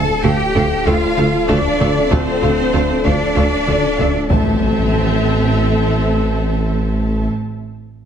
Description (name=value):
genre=cinematic, hybrid orchestral and electronic film score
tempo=96 BPM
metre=4/4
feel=straight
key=A minor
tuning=A4 = 435 Hz
part: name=warm symphonic violin section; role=second line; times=0.0-7.3 s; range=C5 to A5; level=-24 LUFS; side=left 1 dB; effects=none
part: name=analog drone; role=sustained chords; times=0.1-7.3 s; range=A3 to A4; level=-26 LUFS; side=left 2 dB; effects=none
part: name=mellow French horn section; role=sustained chords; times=0.0-7.3 s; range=F3 to A4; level=-24 LUFS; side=left 8 dB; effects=none
part: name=rubbery square bass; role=riff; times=0.0-4.2 s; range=D2 to D3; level=-24 LUFS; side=left 3 dB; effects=none
part: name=mellow tuba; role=bass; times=0.0-7.3 s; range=A1 to D2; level=-22 LUFS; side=right 3 dB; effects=none
part: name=pure sine sub bass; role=bass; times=0.0-7.3 s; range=D1 to A1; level=-25 LUFS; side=equal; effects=none
part: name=rich symphonic cello section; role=bass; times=0.0-7.3 s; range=A3 to A4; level=-21 LUFS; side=right 2 dB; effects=none
part: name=warm symphonic violin section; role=melody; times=0.2-7.3 s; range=E5 to F5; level=-29 LUFS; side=left 4 dB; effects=none
part: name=clear symphonic viola section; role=accompaniment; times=0.2-7.3 s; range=A3 to A4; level=-25 LUFS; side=right 1 dB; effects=none
part: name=warm symphonic double bass section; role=bass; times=0.2-7.3 s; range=A1 to D2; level=-22 LUFS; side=right 3 dB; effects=none
part: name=taiko ensemble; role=drums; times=0.6-5.5 s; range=none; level=-23 LUFS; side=equal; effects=none
part: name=impact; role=sound effects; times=4.3-7.3 s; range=none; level=-25 LUFS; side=left 2 dB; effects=none
room=moderate scoring stage reverb, RT60 1.4 s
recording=heavily compressed radio sound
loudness=-14 LUFS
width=side -8 dB against mid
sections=0.0-4.6 A section; 4.6-7.1 B section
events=impact 4.6-7.1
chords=0.0 Dm; 4.3 Am